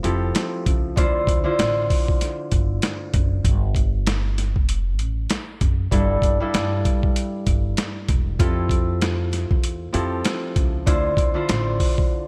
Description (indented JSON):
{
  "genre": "hip hop, boom-bap hip-hop",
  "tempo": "97 BPM",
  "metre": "4/4",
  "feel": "swing 59% on 16ths",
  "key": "D minor",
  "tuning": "A4 = 441 Hz",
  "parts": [
    { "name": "Celtic harp", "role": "accompaniment", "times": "0.0-12.3 s", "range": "G2 to C5", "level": "-27 LUFS", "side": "equal", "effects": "cassette tape, high-pass filter, low-pass filter" },
    { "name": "upright bass", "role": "bass", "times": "0.0-11.7 s", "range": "E1 to G2", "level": "-26 LUFS", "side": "equal", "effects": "none" },
    { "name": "boom bap sampler-style drum kit", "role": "drums", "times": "0.0-12.1 s", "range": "hi-hat, kick drum, snare drum", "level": "-24 LUFS", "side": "equal", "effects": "none" }
  ],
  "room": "light reverb, small room ambience",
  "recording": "none",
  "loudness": "-21 LUFS",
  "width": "mono",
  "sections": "0.0-12.3 A section",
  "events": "break 12.1",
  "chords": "0.0 Fmaj7; 1.0 Dm7; 3.4 Fsus2; 5.9 A7sus4; 8.4 Fmaj7; 10.9 Dm7"
}